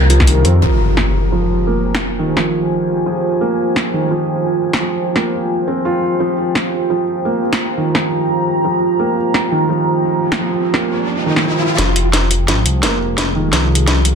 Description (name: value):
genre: half-time drum and bass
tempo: 172 BPM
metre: 4/4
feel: swing 58% on 16ths, half-time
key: F minor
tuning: A4 = 443 Hz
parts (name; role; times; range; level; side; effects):
- deep dark ambient pad; sustained chords; 0.0-14.2 s; F4 to Bb5; -19 LUFS; right 1 dB; chorus, built-in reverb, sidechain pumping
- felt-muted upright piano; arpeggios; 0.0-14.2 s; Eb3 to F4; -19 LUFS; right 2 dB; low-pass filter, ping-pong delay
- dark detuned saw bass; bass; 0.0-0.6, 11.8-14.2 s; F1 to F2; -14 LUFS; equal; tube saturation
- drum and bass drum kit; drums; 0.1-14.1 s; hi-hat, snare drum; -18 LUFS; equal; soft clipping on snare
- impact and riser; sound effects; 0.6-2.0, 10.0-11.8 s; none; -20 LUFS; left 1 dB; none
room: moderate digital room reverb, RT60 1.2 s, digital ambience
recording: dense, heavily limited modern master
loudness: -13 LUFS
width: side -6 dB against mid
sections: 0.6-11.8 A section; 11.8-14.2 B section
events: impact 0.6-2.0; filter sweep on felt piano 0.6-11.8; riser 10.0-11.8; build-up 11.8-14.2; drum fill 11.8-14.2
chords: 0.0 Fsus2; 0.6 Fmadd9